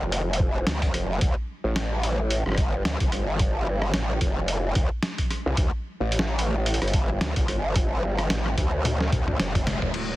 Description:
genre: glitch hop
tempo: 110 BPM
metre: 4/4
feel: swing 57% on 16ths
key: D minor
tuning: A4 = 439 Hz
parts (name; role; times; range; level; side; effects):
- growl bass; bass; 0.0-10.2 s; D1 to D2; -25 LUFS; equal; distortion, chorus
- boom bap sampler-style drum kit; drums; 0.1-10.1 s; crash cymbal, hi-hat, rim click, snare drum, toms; -28 LUFS; equal; none
- electronic kick drum; drums; 0.4-9.6 s; none; -25 LUFS; equal; none
room: light reverb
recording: heavily compressed radio sound, multiband compression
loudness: -22 LUFS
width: side -17 dB against mid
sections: 0.0-9.9 A section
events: drum fill 8.9-9.9; band accent 9.7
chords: none

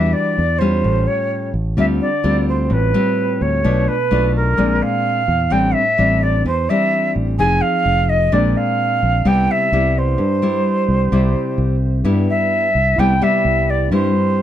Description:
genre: bossa nova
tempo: 128 BPM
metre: 4/4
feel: straight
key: C major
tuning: A4 = 439 Hz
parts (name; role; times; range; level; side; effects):
- jazz flute; melody; 0.0-14.4 s; Bb4 to Ab5; -18 LUFS; right 2 dB; none
- nylon-string guitar; accompaniment; 0.0-14.4 s; G2 to Ab4; -19 LUFS; left 2 dB; none
- fingered electric bass; bass; 0.0-14.1 s; F1 to G2; -18 LUFS; equal; none
- mellow tine electric piano; accompaniment; 13.0-14.4 s; C4 to B5; -26 LUFS; right 6 dB; analog chorus
room: light reverb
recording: close, detailed microphones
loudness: -14 LUFS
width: side -11 dB against mid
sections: 0.0-13.0 A section; 13.0-14.4 A section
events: none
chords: 0.0 Em9; 0.8 Aaug7; 1.8 Dm7; 3.7 Bm7b5; 4.6 Bb9; 5.5 Am7; 7.4 Fm7; 8.3 Bb9; 9.3 Cmaj7

